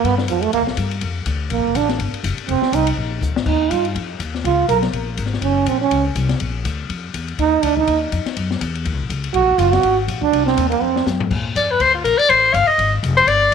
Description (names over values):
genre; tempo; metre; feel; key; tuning
jazz, small-group swing and bop; 245 BPM; 4/4; swing 57% on 8ths; Bb major; A4 = 440 Hz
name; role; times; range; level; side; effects
breathy trombone; second line; 0.0-11.1 s; D3 to Bb4; -18 LUFS; right 8 dB; slapback echo
upright bass; bass; 0.0-13.5 s; F1 to Bb2; -22 LUFS; left 2 dB; none
open jazz drum kit; drums; 0.0-13.5 s; crash cymbal, hi-hat, kick drum, ride cymbal, snare drum, toms; -26 LUFS; left 9 dB; none
warm soprano saxophone; melody; 11.6-13.5 s; F4 to F5; -13 LUFS; left 3 dB; none
room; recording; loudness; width
light reverb, studio ambience; 1960s-style stereo with parts hard left and right; -16 LUFS; side -7 dB against mid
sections
0.0-3.5 A section; 3.5-11.3 A section; 11.3-13.5 A section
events
trombone solo 0.0-11.3; drum fill 3.2, 10.8-11.3; soprano saxophone solo 11.3-13.5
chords
0.0 F69; 0.5 Cm7; 1.0 Dm; 1.5 Bb5; 2.5 F5; 3.0 Bb7; 3.5 Ebadd9; 4.4 Db7; 5.4 Gb; 6.4 Bb; 7.4 Dm; 8.4 Gb7(no3); 9.3 N.C.; 10.3 Cm; 10.8 F5; 11.3 Bb; 12.3 F9; 12.8 Fm7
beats
0.04 0.28 | 0.53 0.77 1.02 1.26 | 1.50 1.75 1.99 2.24 | 2.48 2.73 2.97 3.22 | 3.46 3.71 3.95 4.20 | 4.44 4.69 4.93 5.18 | 5.42 5.67 5.91 6.16 | 6.40 6.65 6.89 7.14 | 7.38 7.63 7.87 8.12 | 8.36 8.61 8.85 9.10 | 9.34 9.59 9.83 10.08 | 10.32 10.57 10.82 11.06 | 11.31 11.55 11.80 12.04 | 12.29 12.54 12.78 13.03 | 13.27 13.52